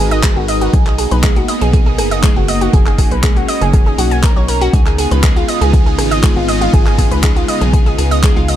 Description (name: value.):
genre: progressive house.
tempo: 120 BPM.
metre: 4/4.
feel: straight.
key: unclear.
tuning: A4 = 440 Hz.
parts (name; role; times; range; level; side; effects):
supersaw pad; sustained chords; 0.0-8.6 s; C#3 to B4; -20 LUFS; equal; phaser, sidechain pumping.
analog pluck; arpeggios; 0.0-8.6 s; G#3 to G#5; -18 LUFS; right 2 dB; chorus, sidechain pumping, digital delay.
tight sequencer bass; bass; 0.0-8.6 s; F#1 to C#2; -17 LUFS; equal; sidechain pumping.
downlifter; sound effects; 0.0-0.7 s; none; barely audible; none; none.
deep house drum kit; drums; 0.1-8.6 s; handclaps, hi-hat, rim click; -22 LUFS; left 2 dB; overdrive, sidechain pumping on hats.
electronic kick drum; drums; 0.2-8.3 s; none; -12 LUFS; equal; overdrive.
room: digital ambience.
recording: dark, warm production.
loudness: -10 LUFS.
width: side -11 dB against mid.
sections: 0.0-8.6 A section.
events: none.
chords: 0.0 G#m7; 0.7 Bmaj7; 4.7 C#7.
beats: 0.23 | 0.73 1.24 1.74 2.23 | 2.73 3.23 3.73 4.24 | 4.74 5.24 5.74 6.24 | 6.74 7.24 7.74 8.23.